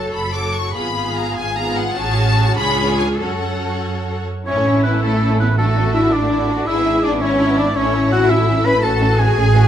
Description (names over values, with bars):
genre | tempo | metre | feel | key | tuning
classical, dramatic, fast romantic movement for symphony orchestra | 93-113 BPM (dotted quarters) | 6/8 | rubato | F# minor, A major from 4.5 s | A4 = 440 Hz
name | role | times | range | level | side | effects
warm symphonic violin section | melody | 0.0-9.7 s | A4 to D6 | -25 LUFS | left 2 dB | none
warm symphonic violin section | second line | 0.0-9.6 s | A3 to F5 | -24 LUFS | left 1 dB | none
rich symphonic viola section | accompaniment | 0.0-9.7 s | F#3 to G#4 | -25 LUFS | left 1 dB | none
rich symphonic cello section | bass | 0.0-9.7 s | A3 to B4 | -24 LUFS | equal | none
rich symphonic double bass section | bass | 0.0-9.7 s | F#1 to F#2 | -19 LUFS | right 2 dB | none
warm oboe | second line | 4.5-9.7 s | A4 to B5 | -21 LUFS | right 1 dB | none
dark French horn section | sustained chords | 4.5-9.7 s | A3 to B4 | -20 LUFS | left 3 dB | none
room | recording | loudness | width
moderate recital hall reverb, RT60 1.6 s | none | -15 LUFS | side -10 dB against mid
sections
0.0-4.5 A section; 4.5-9.7 B section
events
none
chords
0.0 F#m; 0.7 Fdim/Ab; 2.0 F#m/A; 2.6 C#7b9; 3.2 F#m; 4.5 A; 5.6 D/A; 6.7 E7/G#; 7.8 A; 8.8 F#m/A